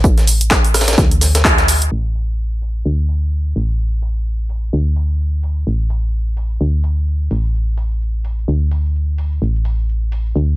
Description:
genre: piano house.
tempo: 128 BPM.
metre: 4/4.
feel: swing 58% on 16ths.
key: unclear.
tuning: A4 = 441 Hz.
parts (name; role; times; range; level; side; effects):
solid FM bass; bass; 0.0-10.6 s; A1 to D2; -16 LUFS; equal; sidechain pumping.
electronic kick drum; drums; 0.0-1.6 s; none; -15 LUFS; equal; none.
electronic tambourine and snare drum; drums; 0.0-1.8 s; none; -21 LUFS; equal; high-pass filter on perc, high-pass filter on snare, high-pass filter on hats.
punchy analog drum machine; drums; 0.0-10.5 s; cabasa, crash cymbal, handclaps, hi-hat, rim click; -16 LUFS; equal; none.
room: little or no reverb.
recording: low-pass filter.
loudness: -15 LUFS.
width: side -18 dB against mid.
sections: 0.0-1.9 A section; 1.9-10.6 B section.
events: band accent 1.4.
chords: none.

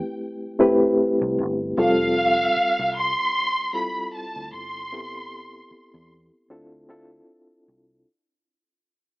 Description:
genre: lush 1970s-style soul.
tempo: 76 BPM.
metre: 4/4.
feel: swing 58% on 16ths.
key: D dorian.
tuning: A4 = 441 Hz.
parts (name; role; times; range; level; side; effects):
reed electric piano; accompaniment; 0.0-8.1 s; G3 to B4; -21 LUFS; equal; fast tremolo.
vintage muted fingered electric bass; bass; 1.2-8.0 s; F1 to E2; -34 LUFS; equal; none.
rich studio violin section; melody; 1.8-6.1 s; F5 to C6; -23 LUFS; equal; none.
room: light reverb, small room ambience.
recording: AM radio sound.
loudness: -19 LUFS.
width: side -23 dB against mid.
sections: 0.0-8.1 A section.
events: fade-out 0.0-8.1.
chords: 0.0 Am7; 1.8 Fmaj7; 4.9 Am7; 6.5 Dm9.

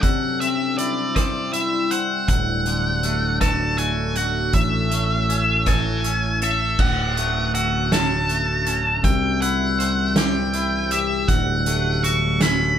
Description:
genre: post-rock.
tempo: 53 BPM (dotted quarters).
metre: 6/8.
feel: straight.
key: unclear.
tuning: A4 = 445 Hz.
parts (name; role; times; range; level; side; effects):
octave-fuzz lead guitar; melody; 0.0-12.8 s; D5 to C#6; -23 LUFS; equal; distortion.
deep dark ambient pad; sustained chords; 0.0-12.8 s; D3 to G#5; -30 LUFS; left 1 dB; chorus, built-in reverb.
glockenspiel with soft plastic mallets; arpeggios; 0.0-12.8 s; E6 to F#6; -34 LUFS; right 2 dB; none.
twangy electric guitar; arpeggios; 0.0-12.8 s; D2 to C5; -27 LUFS; left 3 dB; none.
loose indie drum kit; drums; 0.0-12.6 s; crash cymbal, hi-hat, kick drum, rim click, snare drum; -23 LUFS; right 1 dB; none.
growling fingered electric bass; bass; 2.3-12.8 s; D1 to C2; -24 LUFS; right 1 dB; overdrive.
room: moderate studio ambience, RT60 0.5 s.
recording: band playing live in one room.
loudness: -18 LUFS.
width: side -9 dB against mid.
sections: 0.0-6.8 A section; 6.8-12.8 B section.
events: none.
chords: 0.0 C; 2.3 Dmaj7; 4.5 Amaj7; 6.8 Dmaj7; 9.0 C; 11.3 Dmaj7.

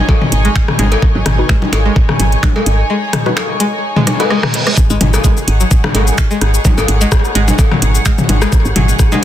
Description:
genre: minimal techno.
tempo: 128 BPM.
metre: 4/4.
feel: swing 55% on 16ths.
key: unclear.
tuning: A4 = 438 Hz.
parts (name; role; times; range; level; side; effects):
woody FM bass; bass; 0.0-8.9 s; G#1; -13 LUFS; equal; sidechain pumping.
pulsing gated texture; texture; 0.0-9.2 s; G#4 to D#5; -28 LUFS; left 1 dB; chorus, built-in reverb, sidechain pumping.
rich symphonic string section; texture; 0.0-9.2 s; D#4 to G#5; -22 LUFS; right 1 dB; sidechain pumping.
string-like resonator pluck; riff; 0.1-9.2 s; F#3 to G#3; -20 LUFS; equal; chorus, sidechain pumping, ping-pong delay.
electronic kick drum; drums; 0.1-9.1 s; none; -12 LUFS; equal; studio reverb.
garage drum kit; percussion; 0.1-9.2 s; bongos, cowbell, rim click, toms; -17 LUFS; left 2 dB; studio reverb, soft clipping on snare.
garage drum kit; drums; 0.3-9.2 s; cabasa, finger snaps, hi-hat, rim click; -20 LUFS; equal; studio reverb, soft clipping on snare.
filtered dub chord stab; stabs; 1.4-4.3 s; G#3 to B4; -23 LUFS; left 3 dB; none.
reverse cymbal; sound effects; 4.0-4.8 s; none; -20 LUFS; right 4 dB; none.
room: light reverb.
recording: dense, heavily limited modern master.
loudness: -10 LUFS.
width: side -12 dB against mid.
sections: 0.0-4.8 A section; 4.8-9.2 B section.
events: reverse cymbal 4.0-4.8; drum fill 4.1-4.8; drop 4.8-9.2.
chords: 0.0 G#5; 4.8 G#7(no3).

